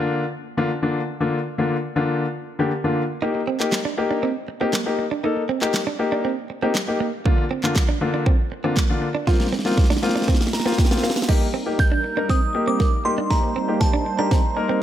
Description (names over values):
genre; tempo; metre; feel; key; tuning
dance-pop; 119 BPM; 4/4; straight; unclear; A4 = 440 Hz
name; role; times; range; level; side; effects
clear baby grand piano; accompaniment; 0.0-14.8 s; D3 to Bb5; -23 LUFS; left 3 dB; sidechain pumping
direct-recorded clean electric guitar; riff; 3.2-14.8 s; Bb3 to F4; -27 LUFS; right 7 dB; lush chorus
pop drum kit; drums; 3.6-14.4 s; crash cymbal, handclaps, kick drum, snare drum; -20 LUFS; equal; none
warm analog pad; sustained chords; 11.3-14.8 s; G3 to C5; -28 LUFS; right 3 dB; chorus, sidechain pumping
glassy synth bell; melody; 11.8-14.7 s; A5 to G6; -25 LUFS; right 1 dB; chorus, tape echo
room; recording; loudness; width
light reverb, digital ambience; none; -19 LUFS; side -11 dB against mid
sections
0.0-11.3 A section; 11.3-14.8 B section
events
drum fill 9.3-11.3, 11.3-14.8; grand piano fill 10.3-11.3; build-up 11.3-14.8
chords
0.0 Bb/D; 3.2 Eb; 7.3 Bb/D; 9.3 Fsus4; 11.3 Eb